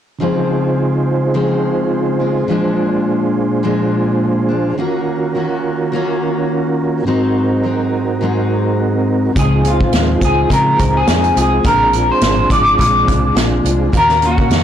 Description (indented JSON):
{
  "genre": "indie pop, bedroom pop",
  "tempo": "105 BPM",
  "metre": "4/4",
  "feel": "swing 55% on 16ths",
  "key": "Db major",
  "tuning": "A4 = 440 Hz",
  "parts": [
    { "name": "mellow tonewheel organ", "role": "accompaniment", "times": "0.2-14.6 s", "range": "Ab2 to F5", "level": "-18 LUFS", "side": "right 4 dB", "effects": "chorus vibrato" },
    { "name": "picked steel-string acoustic guitar", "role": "accompaniment", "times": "0.2-14.6 s", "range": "Ab2 to Gb4", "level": "-18 LUFS", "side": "left 4 dB", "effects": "wide subtle chorus, vibrato effect" },
    { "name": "electric guitar through a small old amp", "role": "melody", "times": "9.4-14.6 s", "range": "F4 to D5", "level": "-14 LUFS", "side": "left 1 dB", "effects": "lush chorus, plate reverb, tape echo" },
    { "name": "vintage muted fingered electric bass", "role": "bass", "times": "9.4-14.6 s", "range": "Ab1 to Db3", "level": "-18 LUFS", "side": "equal", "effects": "transformer saturation" },
    { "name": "unplugged drum kit", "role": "drums", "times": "9.4-14.6 s", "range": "hi-hat, kick drum, snare drum", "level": "-17 LUFS", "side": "equal", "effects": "none" }
  ],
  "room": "moderate small room reverb, RT60 0.5 s",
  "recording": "blown-out, overdriven recording, overdrive",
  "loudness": "-12 LUFS",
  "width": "side -10 dB against mid",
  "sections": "0.2-9.4 A section; 9.4-14.6 B section",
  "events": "none",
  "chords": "0.2 Dbmaj7; 2.5 Bb7; 4.8 Ebm7; 7.1 Ab7; 9.4 Dbmaj7; 11.6 Bb7; 13.9 Ebm7"
}